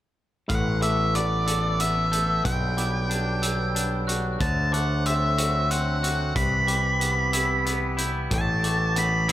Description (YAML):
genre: post-rock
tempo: 61 BPM (dotted quarters)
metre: 6/8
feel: straight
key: A dorian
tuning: A4 = 440 Hz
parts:
  - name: octave-fuzz lead guitar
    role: melody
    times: 0.5-9.3 s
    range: D5 to B5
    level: -26 LUFS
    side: equal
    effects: distortion, slapback echo, digital delay
  - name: pedal harmonium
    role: sustained chords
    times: 0.5-9.3 s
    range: D3 to C5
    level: -34 LUFS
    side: right 2 dB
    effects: none
  - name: twangy electric guitar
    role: arpeggios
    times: 0.5-9.3 s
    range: A2 to A4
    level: -31 LUFS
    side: left 3 dB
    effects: slapback echo, digital delay
  - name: growling picked electric bass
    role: bass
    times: 0.5-9.3 s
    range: A1 to D2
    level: -26 LUFS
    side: equal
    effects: overdrive
  - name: loose indie drum kit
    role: drums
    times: 0.5-9.3 s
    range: hi-hat, kick drum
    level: -30 LUFS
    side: equal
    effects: none
  - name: glockenspiel with soft plastic mallets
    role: arpeggios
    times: 0.8-9.3 s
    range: D6 to G6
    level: -36 LUFS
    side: right 6 dB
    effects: slapback echo, digital delay
room: light reverb, small room ambience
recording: none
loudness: -22 LUFS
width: side -13 dB against mid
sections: 0.5-9.3 A section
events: none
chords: 0.5 Asus2; 2.4 Gmaj7/B; 4.4 D7; 6.4 Cmaj7; 8.3 Asus2